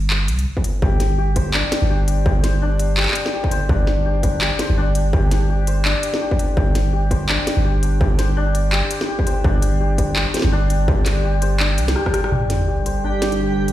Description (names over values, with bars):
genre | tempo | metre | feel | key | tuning
half-time drum and bass | 167 BPM | 4/4 | swing 58% on 16ths, half-time | unclear | A4 = 440 Hz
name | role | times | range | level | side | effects
long sustained 808-style bass | bass | 0.0-13.7 s | G1 to C2 | -19 LUFS | equal | tube saturation
industrial drum kit | drums | 0.1-13.7 s | handclaps, hi-hat, rim click, snare drum | -23 LUFS | equal | none
electronic kick drum | drums | 0.6-12.1 s | none | -20 LUFS | equal | distortion
santur | arpeggios | 0.8-13.7 s | D4 to C5 | -24 LUFS | left 3 dB | vintage 12-bit sampler grit, low-pass filter, tape echo
bowed-like drone | sustained chords | 12.7-13.7 s | D3 to D5 | -24 LUFS | right 4 dB | built-in reverb, sidechain pumping
sub drop | sound effects | 12.3-13.7 s | none | -25 LUFS | equal | none
airy dreamy lead | melody | 13.0-13.6 s | G4 | -24 LUFS | right 3 dB | chorus
room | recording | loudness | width
light reverb, digital ambience | played on a big sound system in a bare room, stone room reverb | -16 LUFS | side -13 dB against mid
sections
0.0-12.3 A section; 12.3-13.7 B section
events
drum fill 12.0-12.3; band accent 12.2; impact 12.3-13.7; filter sweep on synth drone 12.3-13.7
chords
0.0 G5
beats
0.10 0.46 | 0.82 1.18 1.54 1.90 | 2.26 2.62 2.98 3.34 | 3.70 4.06 4.42 4.78 | 5.13 5.49 5.85 6.21 | 6.57 6.93 7.29 7.65 | 8.01 8.37 8.73 9.09 | 9.45 9.81 10.16 10.52 | 10.88 11.24 11.60 11.96 | 12.32 12.68 13.04 13.40